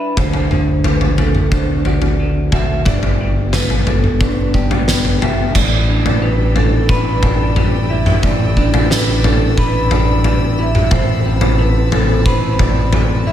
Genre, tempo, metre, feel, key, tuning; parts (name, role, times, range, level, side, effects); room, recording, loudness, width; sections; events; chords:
post-rock; 89 BPM; 4/4; straight; A4 = 440 Hz
electric guitar through a small old amp; arpeggios; 0.0-13.3 s; A2 to B4; -22 LUFS; equal; tremolo, slapback echo
vibraphone with hard mallets; arpeggios; 0.0-13.3 s; A4 to E5; -24 LUFS; right 5 dB; slapback echo
growling fingered electric bass; bass; 0.2-13.3 s; G1 to D2; -18 LUFS; equal; overdrive
oversized low-tuned drum kit; drums; 0.2-13.1 s; crash cymbal, kick drum, snare drum, toms; -15 LUFS; equal
rich chamber string section; sustained chords; 5.6-13.3 s; C4 to E6; -28 LUFS; left 1 dB
little or no reverb; -12 LUFS; side -10 dB against mid
0.0-5.6 A section; 5.6-13.3 B section
0.2 D; 2.9 G; 5.6 Em7/A; 10.9 Amadd9